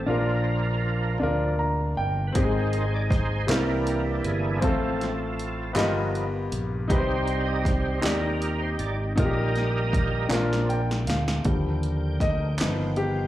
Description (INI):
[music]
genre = slow gospel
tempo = 53 BPM (dotted quarters)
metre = 6/8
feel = straight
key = Eb major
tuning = A4 = 440 Hz
[part]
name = clear baby grand piano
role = accompaniment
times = 0.0-13.3 s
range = G2 to Bb5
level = -27 LUFS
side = left 2 dB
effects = slapback echo
[part]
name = overdriven tonewheel organ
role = sustained chords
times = 0.0-13.3 s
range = D3 to G5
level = -30 LUFS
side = right 4 dB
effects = chorus vibrato, slow rotary speaker
[part]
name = fingered electric bass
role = bass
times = 0.0-13.3 s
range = G1 to Eb2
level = -28 LUFS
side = equal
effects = none
[part]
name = punchy analog drum machine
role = drums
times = 2.4-13.1 s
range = hi-hat, kick drum, snare drum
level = -28 LUFS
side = equal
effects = none
[part]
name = group handclap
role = percussion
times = 3.5-12.9 s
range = none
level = -35 LUFS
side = right 3 dB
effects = none
[sound]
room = little or no reverb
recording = live gig heard through the venue's PA, club reverb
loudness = -23 LUFS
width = side -14 dB against mid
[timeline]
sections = 0.0-11.5 A section; 11.5-13.3 B section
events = tonewheel organ solo 0.0-11.5; grand piano fill 1.2-2.4, 10.3-11.5; drum fill 10.3-11.5; grand piano solo 11.5-13.3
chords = 0.1 Bb; 2.4 Ab; 3.5 C7; 4.6 F/A; 5.8 G7alt; 6.9 Cm; 9.2 Eb/Bb; 10.3 Bb; 11.5 Ebmaj7; 12.6 G7b13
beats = | 0.08 1.22 | 2.35 3.49 | 4.63 5.76 | 6.90 8.04 | 9.18 10.31 | 11.45 12.59